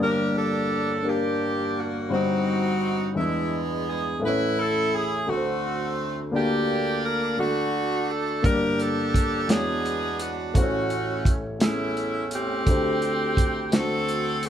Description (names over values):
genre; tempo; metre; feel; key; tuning
slow gospel; 57 BPM (dotted quarters); 6/8; straight; G harmonic minor; A4 = 440 Hz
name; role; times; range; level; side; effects
bright saxophone section; melody; 0.0-14.5 s; G#3 to B4; -26 LUFS; right 1 dB; none
warm upright piano; accompaniment; 0.0-14.5 s; G1 to D5; -26 LUFS; left 2 dB; none
warm soul drum kit; drums; 8.4-14.5 s; hi-hat, kick drum, snare drum; -23 LUFS; right 1 dB; none
room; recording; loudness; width
moderate studio reverb, RT60 0.7 s; band playing live in one room; -22 LUFS; side -9 dB against mid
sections
0.0-14.5 A section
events
none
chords
0.0 Gm; 2.1 Cm/G; 3.2 E7; 4.2 A; 5.3 D7; 6.3 Gm/D; 7.4 D; 8.4 Gm; 9.5 E13; 10.6 A; 12.7 D7sus4; 13.7 D7